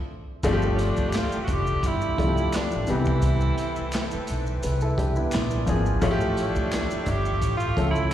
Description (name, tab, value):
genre	R&B, neo-soul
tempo	86 BPM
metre	4/4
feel	swing 55% on 16ths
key	unclear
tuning	A4 = 439 Hz
part	warm upright piano	accompaniment	0.4-8.1 s	E3 to E5	-27 LUFS	left 2 dB	slapback echo
part	hollow soft pad	sustained chords	0.4-8.1 s	A4 to C#6	-39 LUFS	equal	ensemble chorus
part	bright saxophone section	stabs	0.4-8.1 s	C4 to E5	-39 LUFS	equal	slapback echo
part	upright bass	bass	0.4-7.9 s	F1 to C#2	-26 LUFS	equal	none
part	crunchy breakbeat drum kit	drums	0.4-8.1 s	handclaps, hi-hat, kick drum, snare drum	-30 LUFS	equal	none
part	maracas and finger snaps	percussion	0.4-8.1 s	none	-44 LUFS	left 1 dB	none
part	breathy tenor saxophone	melody	0.7-8.1 s	C#4 to G4	-29 LUFS	right 3 dB	slapback echo
room	studio reverb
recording	live gig heard through the venue's PA, recital hall reverb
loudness	-22 LUFS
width	side -11 dB against mid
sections	0.4-8.1 A section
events	stop 0.0-0.4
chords	0.4 G9sus4; 2.9 Cmaj7; 5.3 Bb9; 6.0 A7b13